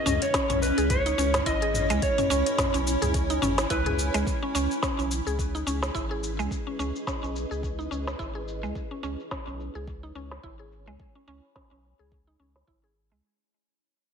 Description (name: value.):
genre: organic downtempo.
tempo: 107 BPM.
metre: 4/4.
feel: swing 57% on 16ths.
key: C# minor.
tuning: A4 = 440 Hz.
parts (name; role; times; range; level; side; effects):
electric slide guitar; melody; 0.0-4.2 s; B4 to D#5; -29 LUFS; equal; tape echo.
granular cloud pad; sustained chords; 0.0-13.2 s; C#4 to B5; -32 LUFS; equal; built-in reverb, sidechain pumping.
mallet-like synth pluck; arpeggios; 0.0-13.2 s; G#3 to G#4; -31 LUFS; equal; chorus, ping-pong delay.
warm sub bass; bass; 0.1-13.2 s; G#1 to C#2; -31 LUFS; equal; sidechain pumping.
organic electronic drum kit; drums; 0.1-13.2 s; hi-hat, shaker, snare drum, toms; -31 LUFS; equal; low-pass filter on perc, low-pass filter on hats, low-pass filter on snare, low-pass filter on toms, low-pass filter on room.
electronic kick drum; drums; 0.3-12.8 s; none; -33 LUFS; equal; none.
room: light reverb, digital ambience.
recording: none.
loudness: -24 LUFS.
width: side -6 dB against mid.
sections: 0.0-4.3 A section; 4.3-13.2 B section.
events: fade-out 4.3-13.2; filter sweep on drum 4.3-13.2; filter sweep on ambient pad 4.3-13.2.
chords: 0.0 C#m9/G#.